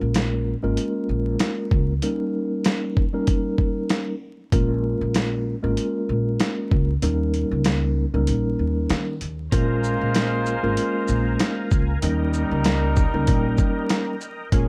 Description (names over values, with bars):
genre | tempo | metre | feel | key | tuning
hip hop, boom-bap hip-hop | 96 BPM | 4/4 | swing 55% on 16ths | Bb dorian | A4 = 440 Hz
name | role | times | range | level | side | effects
mellow tine electric piano | accompaniment | 0.0-14.7 s | G3 to Bb4 | -27 LUFS | equal | cassette tape, high-pass filter, low-pass filter
upright bass | bass | 0.0-14.7 s | Ab1 to Eb3 | -26 LUFS | equal | none
dusty soul sampler-style drum kit | drums | 0.1-14.7 s | hi-hat, kick drum, shaker, snare drum | -25 LUFS | equal | overdrive
percussive tonewheel organ | sustained chords | 9.5-14.7 s | Bb4 to Bb5 | -36 LUFS | equal | overdrive, chorus vibrato, slow rotary speaker, high-pass filter, low-pass filter
clear trumpet section | stabs | 9.5-14.7 s | G3 to C5 | -32 LUFS | equal | high-pass filter, low-pass filter, delay
room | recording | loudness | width
light reverb, digital ambience | vinyl crackle | -23 LUFS | mono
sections
0.0-9.5 A section; 9.5-14.7 B section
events
kick muted 7.0-9.5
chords
0.0 Bbm7; 2.0 Eb7; 4.5 Bbm7; 7.0 Eb7; 9.5 Bbm7; 12.0 Eb7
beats
0.15 0.77 1.40 | 2.02 2.65 3.27 3.90 | 4.52 5.15 5.77 6.40 | 7.02 7.65 8.27 8.90 | 9.52 10.15 10.77 11.40 | 12.02 12.65 13.27 13.90 | 14.52